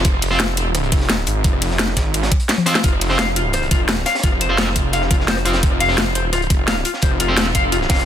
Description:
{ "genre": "dark technical drum and bass", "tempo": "172 BPM", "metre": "4/4", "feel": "straight", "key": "F minor", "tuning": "A4 = 440 Hz", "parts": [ { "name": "wide detuned saw bass", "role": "bass", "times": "0.0-8.1 s", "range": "F1 to Ab1", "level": "-20 LUFS", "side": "equal", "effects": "chorus, tube saturation, sidechain pumping" }, { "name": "crunchy breakbeat drum kit", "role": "drums", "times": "0.0-8.0 s", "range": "hi-hat, snare drum", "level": "-28 LUFS", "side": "right 1 dB", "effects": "none" }, { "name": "drum and bass drum kit", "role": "drums", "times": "0.0-8.0 s", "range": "hi-hat, rim click, snare drum, toms", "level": "-20 LUFS", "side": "left 1 dB", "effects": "overdrive, studio reverb" }, { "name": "electronic kick drum", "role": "drums", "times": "0.0-8.0 s", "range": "none", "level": "-18 LUFS", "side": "equal", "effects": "overdrive, studio reverb" }, { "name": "fuzz guitar", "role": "stabs", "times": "0.3-0.4, 2.7-7.5 s", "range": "C4 to C5", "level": "-23 LUFS", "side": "right 1 dB", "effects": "distortion, tape echo" }, { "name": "clean electric guitar", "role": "arpeggios", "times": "2.8-8.0 s", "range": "F4 to F5", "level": "-22 LUFS", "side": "left 4 dB", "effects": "sidechain pumping, tape echo" } ], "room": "light reverb", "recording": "dense, heavily limited modern master", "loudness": "-15 LUFS", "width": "side -10 dB against mid", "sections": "0.0-8.1 A section", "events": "drum fill 2.5-2.8", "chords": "0.0 F5", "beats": "| 0.05 0.40 0.75 1.09 | 1.44 1.79 2.14 2.49 | 2.84 3.19 3.54 3.89 | 4.24 4.58 4.93 5.28 | 5.63 5.98 6.33 6.68 | 7.03 7.37 7.72" }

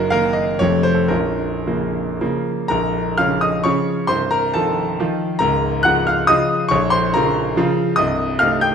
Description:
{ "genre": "classical, romantic triple-time dance for piano with dotted rhythms", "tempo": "103-149 BPM", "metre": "3/4", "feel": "rubato", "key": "Bb minor", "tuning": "A4 = 440 Hz", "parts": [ { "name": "clear concert grand piano", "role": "solo", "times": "0.0-8.7 s", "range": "Bb0 to G6", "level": "-16 LUFS", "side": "equal", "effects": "none" } ], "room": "moderate recital hall reverb, RT60 1.3 s", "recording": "none", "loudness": "-16 LUFS", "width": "side -7 dB against mid", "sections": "0.0-2.7 A section; 2.7-8.7 B section", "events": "none", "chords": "0.0 Ebm/Gb; 0.6 F; 1.1 Bbm; 4.1 F7/C; 5.4 Bbm/Db; 6.7 Bbm; 8.0 Adim/C", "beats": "0.14 0.62 | 1.12 1.67 2.21 | 2.71 3.19 3.65 | 4.09 4.56 5.00 | 5.42 5.85 6.29 | 6.71 7.14 7.56 | 7.97 8.40" }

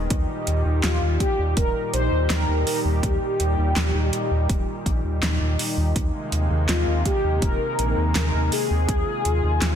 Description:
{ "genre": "synthwave", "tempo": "82 BPM", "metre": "4/4", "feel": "straight", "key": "Eb major", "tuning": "A4 = 440 Hz", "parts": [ { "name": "warm analog pad", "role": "sustained chords", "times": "0.0-9.8 s", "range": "Bb2 to G4", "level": "-28 LUFS", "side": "equal", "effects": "lush chorus, sidechain pumping" }, { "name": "round analog bass", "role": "bass", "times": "0.0-9.8 s", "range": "Eb1 to Eb2", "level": "-22 LUFS", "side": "equal", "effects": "sidechain pumping" }, { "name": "electronic kick drum", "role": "drums", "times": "0.1-9.0 s", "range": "none", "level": "-24 LUFS", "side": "equal", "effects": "overdrive" }, { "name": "pop drum kit", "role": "drums", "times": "0.1-9.8 s", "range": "handclaps, hi-hat, snare drum", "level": "-27 LUFS", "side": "right 1 dB", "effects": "overdrive" }, { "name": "mellow synth brass", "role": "melody", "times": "0.8-9.8 s", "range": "F4 to C5", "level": "-26 LUFS", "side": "left 2 dB", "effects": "chorus, ping-pong delay" } ], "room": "light reverb", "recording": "dense, heavily limited modern master", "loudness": "-20 LUFS", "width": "side -9 dB against mid", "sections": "0.0-9.8 A section", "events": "none", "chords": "0.1 Eb; 6.0 Abadd9/Eb", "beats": "| 0.11 0.84 1.57 2.30 | 3.03 3.76 4.50 5.23 | 5.96 6.69 7.42 8.15 | 8.89 9.62" }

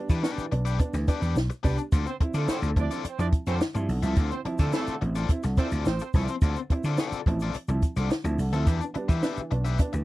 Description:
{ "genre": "funk", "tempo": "107 BPM", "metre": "4/4", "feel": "straight", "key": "D dorian", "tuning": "A4 = 439 Hz", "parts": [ { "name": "clear upright piano", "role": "stabs", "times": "0.0-10.0 s", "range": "D3 to E4", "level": "-33 LUFS", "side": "right 3 dB", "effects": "none" }, { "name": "biting overdriven guitar", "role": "accompaniment", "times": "0.1-10.0 s", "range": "C4 to E5", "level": "-34 LUFS", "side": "left 8 dB", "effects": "none" }, { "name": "vintage slap bass", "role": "bass", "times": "0.1-10.0 s", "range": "A1 to E3", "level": "-27 LUFS", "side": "equal", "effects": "none" }, { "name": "compact cocktail drum kit", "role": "drums", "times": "0.1-9.9 s", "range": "hi-hat, kick drum, snare drum", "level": "-24 LUFS", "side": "equal", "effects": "none" }, { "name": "tube shaker", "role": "percussion", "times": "0.1-10.0 s", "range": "none", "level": "-50 LUFS", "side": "left 4 dB", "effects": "none" }, { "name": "warm horn section", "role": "second line", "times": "2.1-6.1 s", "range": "A3 to D5", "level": "-34 LUFS", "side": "right 7 dB", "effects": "none" } ], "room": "little or no reverb", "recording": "dry, close 1970s-style studio recording", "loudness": "-24 LUFS", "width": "side -17 dB against mid", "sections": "0.0-10.0 A section", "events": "none", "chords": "0.0 Em7; 1.9 Dm7; 8.7 Em7", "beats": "0.23 0.80 1.36 | 1.92 2.48 3.05 3.61 | 4.17 4.73 5.29 5.86 | 6.42 6.98 7.54 8.11 | 8.67 9.23 9.79" }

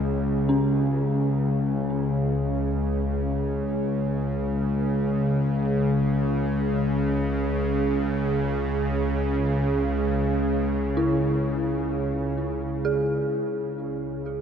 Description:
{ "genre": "dark ambient drone", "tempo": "free time", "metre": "none", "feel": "none", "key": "C# minor", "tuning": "A4 = 440 Hz", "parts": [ { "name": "dark detuned synth bell", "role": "arpeggios", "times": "0.0-14.4 s", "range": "C#4 to G#4", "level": "-29 LUFS", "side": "right 1 dB", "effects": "chorus, phaser, tape echo" }, { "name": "bowed-like drone", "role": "drone", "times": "0.0-14.4 s", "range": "C#2 to C#3", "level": "-23 LUFS", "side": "equal", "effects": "built-in reverb" } ], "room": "wet cathedral reverb, RT60 6.5 s", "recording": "none", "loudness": "-22 LUFS", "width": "side -8 dB against mid", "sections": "0.0-14.4 A section", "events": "fade-out 12.6-14.4", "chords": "0.0 N.C.; 7.6 C#m", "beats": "free time" }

